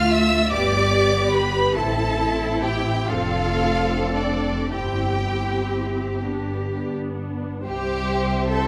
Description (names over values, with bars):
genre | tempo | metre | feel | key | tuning
classical, slow romantic movement for string orchestra | 34-50 BPM (dotted quarters) | 6/8 | rubato | C major | A4 = 440 Hz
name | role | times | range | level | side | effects
warm studio violin section | melody | 0.0-8.7 s | D5 to F6 | -28 LUFS | equal | none
warm symphonic violin section | second line | 0.0-8.7 s | D4 to E5 | -28 LUFS | equal | none
dark studio viola section | accompaniment | 0.0-8.7 s | G3 to C5 | -30 LUFS | equal | none
warm studio cello section | bass | 0.0-8.7 s | C2 to A4 | -29 LUFS | equal | none
warm studio double bass section | bass | 0.0-8.7 s | F1 to D2 | -28 LUFS | equal | none
room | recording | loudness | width
moderate scoring stage reverb, RT60 1.6 s | none | -22 LUFS | mono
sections
0.0-7.7 A section; 7.7-8.7 B section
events
none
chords
0.0 Dm; 0.5 G; 1.7 Am; 3.1 Dm7/F; 4.7 C/G; 6.2 G; 7.7 C